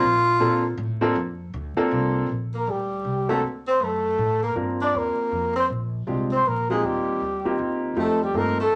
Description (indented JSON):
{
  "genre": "jazz, small-group swing and bop",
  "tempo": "158 BPM",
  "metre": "3/4",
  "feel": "swing 64% on 8ths",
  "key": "Bb major",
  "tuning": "A4 = 440 Hz",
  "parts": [
    { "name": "clear tenor saxophone", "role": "second line", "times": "0.0-8.8 s", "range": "G3 to F4", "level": "-28 LUFS", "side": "equal", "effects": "none" },
    { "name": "upright bass", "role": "bass", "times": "0.0-8.8 s", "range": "Bb1 to Bb2", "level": "-32 LUFS", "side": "equal", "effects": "none" },
    { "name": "warm concert grand piano", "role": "accompaniment", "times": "0.4-8.6 s", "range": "Ab3 to Bb4", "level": "-27 LUFS", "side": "equal", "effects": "none" },
    { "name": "breathy trumpet", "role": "melody", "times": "2.6-8.8 s", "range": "G4 to D5", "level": "-26 LUFS", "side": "equal", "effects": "none" }
  ],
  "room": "moderate club reverb, RT60 0.6 s",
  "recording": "vinyl crackle",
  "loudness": "-24 LUFS",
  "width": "mono",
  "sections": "0.0-2.3 A section; 2.3-8.8 B section",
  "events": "tenor saxophone solo 0.0-2.3",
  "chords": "0.0 Bbmaj9; 3.4 D; 4.6 Gm7; 5.7 Bb13; 6.8 Eb69; 8.0 F9"
}